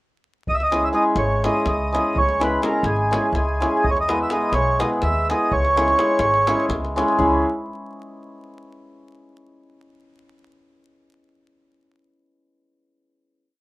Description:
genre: balkan folk, Balkan wedding band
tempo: 250 BPM (eighths)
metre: 7/8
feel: straight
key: C# minor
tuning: A4 = 440 Hz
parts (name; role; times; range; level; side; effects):
- mellow accordion; melody; 0.5-6.7 s; G#4 to E5; -21 LUFS; right 1 dB; none
- upright bass; bass; 0.5-7.4 s; G#1 to E2; -26 LUFS; equal; none
- davul; percussion; 0.5-7.4 s; none; -29 LUFS; left 1 dB; none
- hammered dulcimer; accompaniment; 0.7-7.4 s; G#3 to G#4; -21 LUFS; equal; none
room: moderate studio reverb, RT60 0.5 s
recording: rough home demo mix, vinyl crackle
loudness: -17 LUFS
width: side -18 dB against mid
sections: 0.5-7.2 A section; 7.2-8.9 final chord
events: none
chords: 0.5 C#m; 3.8 E; 5.5 C#m

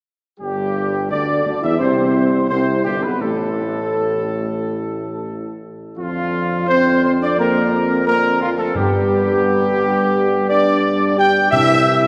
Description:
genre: classical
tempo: 86 BPM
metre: 4/4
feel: straight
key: C major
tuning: A4 = 440 Hz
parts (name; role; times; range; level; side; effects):
- mellow trumpet section; melody; 0.4-12.1 s; F4 to G5; -21 LUFS; equal; none
- mellow French horn section; sustained chords; 0.4-12.1 s; F3 to G4; -25 LUFS; equal; none
- warm trombone section; sustained chords; 0.4-11.8 s; G2 to D4; -27 LUFS; equal; none
- warm tuba; bass; 0.4-12.1 s; G1 to G2; -24 LUFS; equal; none
- timpani; percussion; 8.8-12.1 s; G2 to C3; -27 LUFS; equal; none
room: wet church reverb, RT60 3.3 s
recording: recorded in a church or concert hall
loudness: -17 LUFS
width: mono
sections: 0.4-12.1 A section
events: none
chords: 0.4 Cadd9/G; 3.2 N.C.; 6.0 Bbadd9/F; 8.8 G; 11.5 Cadd9

